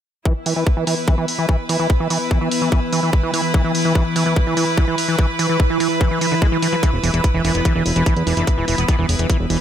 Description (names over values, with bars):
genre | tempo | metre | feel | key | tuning
psychedelic trance | 146 BPM | 4/4 | straight | unclear | A4 = 440 Hz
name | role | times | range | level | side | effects
evolving wavetable pad | sustained chords | 0.7-9.6 s | E3 to E4 | -24 LUFS | left 1 dB | chorus, built-in reverb, phaser, sidechain pumping
overdriven acid bass | riff | 0.3-9.6 s | D3 to G#3 | -22 LUFS | right 1 dB | auto-pan, sidechain pumping, digital delay
electronic kick drum | drums | 0.3-9.4 s | none | -16 LUFS | equal | none
clear studio string section | texture | 0.3-9.6 s | E4 to B5 | -24 LUFS | right 2 dB | sidechain pumping
electronic hi-hat | drums | 0.5-9.6 s | none | -26 LUFS | right 1 dB | none
fat analog bass | bass | 6.9-9.6 s | E1 to E2 | -20 LUFS | equal | none
metallic wobble bass | second line | 7.4-8.9 s | B3 to D4 | -32 LUFS | right 1 dB | wide subtle chorus, sidechain pumping, high-pass filter, dub echo
room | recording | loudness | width
light reverb | none | -16 LUFS | side -10 dB against mid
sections
0.3-9.6 A section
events
filter sweep on acid bass 0.3-9.6; filter sweep on ambient pad 0.3-9.6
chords
0.3 E5